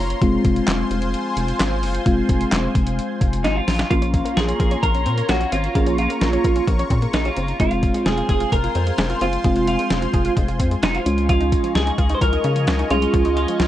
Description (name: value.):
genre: synth-pop.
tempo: 130 BPM.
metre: 4/4.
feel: straight.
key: Bb minor.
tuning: A4 = 440 Hz.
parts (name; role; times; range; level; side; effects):
mellow FM electric piano; accompaniment; 0.0-13.7 s; Ab3 to Bb5; -24 LUFS; left 2 dB; chorus.
lush unison pad; sustained chords; 0.0-13.7 s; F4 to Db6; -28 LUFS; left 1 dB; chorus, phaser.
rubbery square bass; bass; 0.0-13.7 s; F1 to Db3; -23 LUFS; equal; none.
detuned 8-bit digital drum machine; drums; 0.1-13.7 s; handclaps, hi-hat, kick drum, snare drum; -22 LUFS; equal; none.
twelve-string electric guitar; melody; 3.4-13.7 s; Eb4 to C5; -23 LUFS; right 3 dB; lush chorus, tape echo.
analog pluck; arpeggios; 3.9-13.7 s; F3 to Bb4; -29 LUFS; left 1 dB; chorus, tape echo.
room: light reverb.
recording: nothing above 10.6 kHz.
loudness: -17 LUFS.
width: side -13 dB against mid.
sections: 0.0-3.9 A section; 3.9-13.7 B section.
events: FM electric piano fill 0.0; drum fill 3.4-3.9.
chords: 0.2 Fm; 3.7 Bbmadd9; 7.6 Fm; 11.1 Dbadd9.